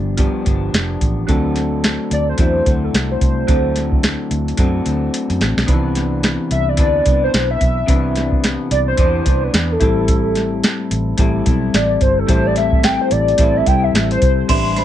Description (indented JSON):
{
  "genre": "indie pop, bedroom pop",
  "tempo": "109 BPM",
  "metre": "4/4",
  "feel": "swing 60% on 16ths",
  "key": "A minor",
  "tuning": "A4 = 440 Hz",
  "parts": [
    { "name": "electric guitar through a small old amp", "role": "accompaniment", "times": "0.0-14.8 s", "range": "G2 to F#4", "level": "-22 LUFS", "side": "left 6 dB", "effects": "lush chorus, warbly pitch drift, plate reverb" },
    { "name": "soft electric-piano-like synth keys", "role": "accompaniment", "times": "0.0-14.8 s", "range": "D#3 to D5", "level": "-24 LUFS", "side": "right 3 dB", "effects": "chorus, plate reverb" },
    { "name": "vintage muted fingered electric bass", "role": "bass", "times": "0.0-14.8 s", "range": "F1 to F#2", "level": "-20 LUFS", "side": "equal", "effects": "none" },
    { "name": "soft vintage rhythm box", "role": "drums", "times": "0.2-14.8 s", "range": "crash cymbal, hi-hat, kick drum, snare drum", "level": "-17 LUFS", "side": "equal", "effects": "none" },
    { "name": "warbly nostalgic lead", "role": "melody", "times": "2.1-14.8 s", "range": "A4 to C6", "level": "-18 LUFS", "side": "equal", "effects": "analog chorus, slapback echo, plate reverb" },
    { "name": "vibraphone with medium hard mallets", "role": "second line", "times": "14.5-14.8 s", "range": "C5 to E5", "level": "-22 LUFS", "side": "right 5 dB", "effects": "lush chorus, slapback echo" }
  ],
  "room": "light reverb",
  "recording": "none",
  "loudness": "-14 LUFS",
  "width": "side -11 dB against mid",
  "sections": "0.0-14.5 A section",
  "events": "soft synth lead solo 0.0-14.5; drum fill 4.6-5.7",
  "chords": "0.0 G7; 1.3 D7; 5.7 Cmaj9; 9.8 Am7",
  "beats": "0.19 0.73 | 1.28 1.83 2.38 2.93 | 3.48 4.03 4.58 5.13 | 5.68 6.23 6.78 7.33 | 7.88 8.43 8.98 9.53 | 10.08 10.63 11.19 11.74 | 12.29 12.84 13.39 13.94 | 14.49"
}